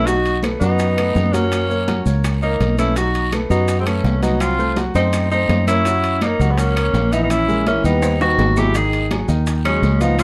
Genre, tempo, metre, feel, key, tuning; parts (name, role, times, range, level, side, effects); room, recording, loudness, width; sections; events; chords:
Afro-Cuban jazz; 166 BPM; 4/4; straight; F# mixolydian; A4 = 439 Hz
warm tenor saxophone; melody; 0.0-10.2 s; B3 to G#4; -23 LUFS; equal
breathy tenor saxophone; second line; 0.0-10.2 s; G#3 to E4; -28 LUFS; equal
warm concert grand piano; accompaniment; 0.0-10.2 s; D#3 to F#5; -25 LUFS; equal
fingered electric bass; bass; 0.0-10.2 s; G#1 to F#2; -22 LUFS; equal
bongos; percussion; 0.1-10.2 s; -34 LUFS; equal
congas; percussion; 0.1-10.2 s; -29 LUFS; equal
guiro; percussion; 0.1-10.2 s; -41 LUFS; equal
maracas; percussion; 0.1-10.2 s; -41 LUFS; equal
timbales; percussion; 0.1-10.2 s; -33 LUFS; equal
claves; percussion; 0.4-10.2 s; -37 LUFS; equal
light reverb; dark, warm production; -18 LUFS; mono
0.0-10.2 A section
drum fill 8.0-8.7
0.1 B7; 1.5 F#; 3.0 B7; 4.4 Cdim7; 5.9 F#7; 7.3 A#m7b5; 8.0 D#aug; 8.7 G#5